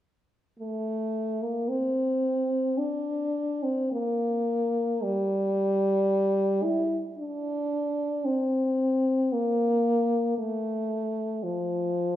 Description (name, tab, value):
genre	classical, free, expressive piece for unaccompanied French horn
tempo	55 BPM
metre	3/4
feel	uneven beats, rubato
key	F major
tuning	A4 = 440 Hz
part	mellow French horn	solo	0.6-12.2 s	F3 to E4	-25 LUFS	equal	none
room	wet recital hall reverb, RT60 1.6 s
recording	minimal, uncompressed stereo recording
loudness	-25 LUFS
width	side -12 dB against mid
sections	0.6-12.2 A section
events	none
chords	none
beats	| 0.59 1.69 2.78 | 3.91 5.02 6.10 | 7.17 8.24 9.32 | 10.37 11.41